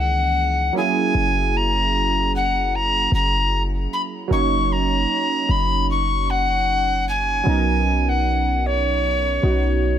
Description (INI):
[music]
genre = contemporary R&B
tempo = 76 BPM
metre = 4/4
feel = swing 54% on 16ths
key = unclear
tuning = A4 = 443 Hz
[part]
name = soprano recorder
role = melody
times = 0.0-10.0 s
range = C#5 to C#6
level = -20 LUFS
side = left 2 dB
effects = none
[part]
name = warm analog keys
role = accompaniment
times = 0.0-10.0 s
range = D#3 to C#5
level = -24 LUFS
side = right 5 dB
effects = chorus
[part]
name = warm 808-style bass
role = bass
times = 0.0-10.0 s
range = F#1 to C#2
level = -22 LUFS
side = equal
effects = none
[sound]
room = little or no reverb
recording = none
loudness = -17 LUFS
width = side -10 dB against mid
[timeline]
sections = 0.0-10.0 A section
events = none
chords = 0.0 C#m69; 0.7 F#7; 4.3 D#m7/F#; 7.5 Bmaj9